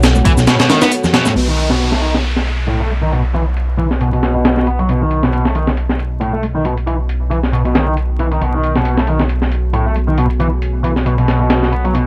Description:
breakbeat, breaks; 136 BPM; 4/4; swing 55% on 16ths; B mixolydian; A4 = 440 Hz
dark analog pad; sustained chords; 0.0-12.1 s; B3 to G#5; -29 LUFS; equal
fat analog bass; bass; 0.0-12.1 s; B1; -19 LUFS; equal
breakbeat sampler-style drum kit; drums; 0.0-12.1 s; hi-hat, kick drum, snare drum; -19 LUFS; equal; low-pass filter on hats, low-pass filter on kick, low-pass filter on snare
shaker; drums; 0.0-1.3 s; -32 LUFS; equal; low-pass filter on perc, low-pass filter on room
congas; percussion; 0.2-1.3 s; -24 LUFS; equal
distorted electric guitar; riff; 0.3-12.1 s; A2 to B3; -19 LUFS; equal; overdrive, tube saturation, vintage 12-bit sampler grit, low-pass filter, tape echo
downlifter; sound effects; 1.4-4.9 s; -28 LUFS; equal
light reverb; dry, gritty hardware recording, vinyl crackle; -15 LUFS; mono
0.0-1.4 A section; 1.4-12.1 B section
0.0 B7(no3); 1.4 B7

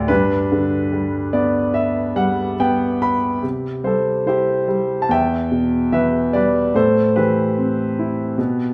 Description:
classical, lyrical solo piano; 73 BPM; 4/4; rubato; G major; A4 = 440 Hz
warm grand piano; solo; 0.0-8.7 s; D2 to B5; -19 LUFS; equal
moderate recital hall reverb, RT60 1.4 s; -19 LUFS; mono
0.0-3.4 A section; 3.4-8.7 B section
grand piano fill 0.9-3.4
0.1 G; 3.4 C; 5.1 Em; 6.7 Amadd9

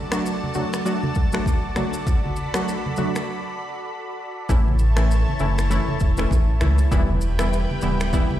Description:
afrobeats; 99 BPM; 4/4; swing 58% on 16ths; D major; A4 = 441 Hz
glassy wavetable pluck; accompaniment; 0.0-8.4 s; E3 to F#4; -26 LUFS; equal; chorus
lush unison pad; sustained chords; 0.0-8.4 s; E4 to B5; -30 LUFS; equal; chorus, sidechain pumping
deep house drum kit; drums; 0.1-8.3 s; finger snaps, kick drum, rim click, shaker; -24 LUFS; equal
congas; percussion; 0.4-8.4 s; -30 LUFS; right 2 dB
sub bass with octave; bass; 4.5-8.2 s; D1 to C#2; -20 LUFS; equal
light reverb, digital ambience; played on a big sound system in a bare room, large studio reverb; -19 LUFS; side -12 dB against mid
0.0-8.4 A section
break 3.3-4.5
0.0 D; 4.5 A; 6.9 Em

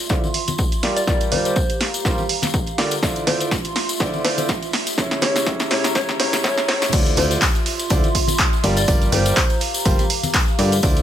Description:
piano house; 123 BPM; 4/4; swing 55% on 16ths; D minor; A4 = 439 Hz
warbly tape-like pad; texture; 0.0-11.0 s; F4 to C6; -28 LUFS; right 2 dB; chorus, built-in reverb, sidechain pumping
clear concert grand piano; riff; 0.1-11.0 s; C#3 to D5; -25 LUFS; right 1 dB; sidechain pumping, low-pass filter
plucky analog bass; bass; 0.1-11.0 s; G1 to A2; -25 LUFS; equal; sidechain pumping, high-pass filter
electronic kick drum; drums; 0.1-10.9 s; -21 LUFS; equal
punchy analog drum machine; drums; 0.1-11.0 s; crash cymbal, handclaps, hi-hat, ride cymbal, snare drum; -22 LUFS; right 1 dB
tambourine and congas; percussion; 0.1-11.0 s; -27 LUFS; left 5 dB
soft struck synth lead; melody; 1.0-9.6 s; C5 to D5; -26 LUFS; left 1 dB; chorus, tremolo, digital delay
crisp fusion drum kit; drums; 6.9-11.0 s; hi-hat, snare drum, tambourine; -33 LUFS; right 4 dB
light reverb, studio reverb; high-pass filter; -17 LUFS; side -10 dB against mid
0.0-6.9 A section; 6.9-11.0 B section
build-up 0.0-6.9; drum fill 0.0-6.9; filter sweep on grand piano 0.0-6.9; filter sweep 0.0-6.9; drop 6.9-11.0
0.0 Dm9; 0.8 Gm7; 3.0 Dm9; 4.7 A7b9; 6.9 Dm9; 8.6 Gm7

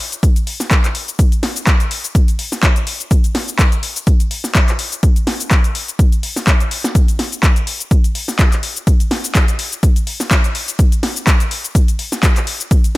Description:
house; 125 BPM; 4/4; swing 55% on 16ths
punchy analog drum machine; drums; 0.1-13.0 s; handclaps, hi-hat, shaker, snare drum; -19 LUFS; left 1 dB; overdrive
electronic kick drum; drums; 0.2-12.8 s; -12 LUFS; equal; overdrive
digital ambience; -13 LUFS; side -20 dB against mid
0.0-13.0 A section

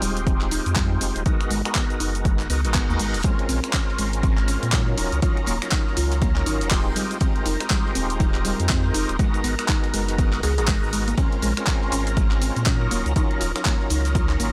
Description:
deep house; 121 BPM; 4/4; swing 60% on 16ths; Bb minor; A4 = 440 Hz
mallet-like synth pluck; arpeggios; 0.0-14.5 s; G3 to Ab4; -33 LUFS; equal; chorus, sidechain pumping, analog delay
overdriven tonewheel organ; stabs; 0.0-14.5 s; Gb3 to Bb4; -30 LUFS; equal; chorus vibrato, slow rotary speaker, sidechain pumping, analog delay
warm sub bass; bass; 0.0-14.5 s; Eb1 to Bb2; -27 LUFS; equal; sidechain pumping
deep house drum kit; drums; 0.0-14.5 s; finger snaps, handclaps, hi-hat, shaker; -30 LUFS; equal; small room ambience
electronic kick drum; drums; 0.3-14.3 s; -25 LUFS; equal; overdrive, small room ambience
reverse cymbal; sound effects; 2.5-3.2 s; -38 LUFS; equal
natural country drum kit; drums; 3.2-14.5 s; hi-hat, ride cymbal, snare drum; -43 LUFS; equal
analog string pad; texture; 3.2-14.5 s; Bb4 to Bb5; -40 LUFS; equal
studio ambience; dry, gritty hardware recording; -22 LUFS; mono
0.0-14.5 A section
reverse cymbal 2.5-3.2
0.0 Fm9; 1.3 Abm9; 3.2 Bbm9; 5.0 Ebm9; 7.0 Fm9; 9.2 Abm9; 11.2 Bbm9; 12.9 Ebm9

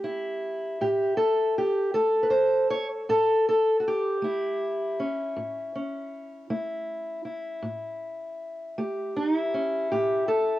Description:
acoustic country blues, solo or duo; 53 BPM (dotted quarters); 12/8; straight; A mixolydian; A4 = 440 Hz
fingerpicked steel-string acoustic guitar; solo; 0.0-10.6 s; A2 to C#5; -24 LUFS; equal; cassette tape
moderate spring reverb, RT60 1.3 s; home recording on cassette; -24 LUFS; side -15 dB against mid
0.0-10.6 A section
0.0 A7

